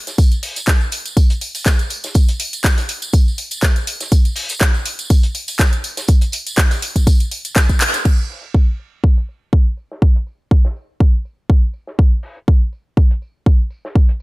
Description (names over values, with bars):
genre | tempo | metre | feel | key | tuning
house | 122 BPM | 4/4 | swing 55% on 16ths | none | none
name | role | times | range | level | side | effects
house drum kit | drums | 0.1-8.2 s | crash cymbal, handclaps, hi-hat | -21 LUFS | equal | none
warm soul drum kit | drums | 0.1-14.2 s | hi-hat, snare drum, tambourine | -28 LUFS | equal | high-pass filter on hats, low-pass filter on hats, high-pass filter on snare, low-pass filter on snare, high-pass filter on perc, low-pass filter on perc, high-pass filter on room, low-pass filter on room
tambourine | percussion | 0.1-8.0 s | none | -30 LUFS | right 2 dB | none
electronic kick drum | drums | 0.2-14.1 s | none | -12 LUFS | equal | none
room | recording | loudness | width
little or no reverb | none | -14 LUFS | side -22 dB against mid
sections
0.0-8.1 A section; 8.1-14.2 B section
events
drum fill 7.8; band accent 7.8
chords
none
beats
| 0.18 0.68 1.17 1.66 | 2.15 2.64 3.13 3.63 | 4.12 4.61 5.10 5.59 | 6.09 6.58 7.07 7.56 | 8.05 8.54 9.04 9.53 | 10.02 10.51 11.00 11.50 | 11.99 12.48 12.97 13.46 | 13.96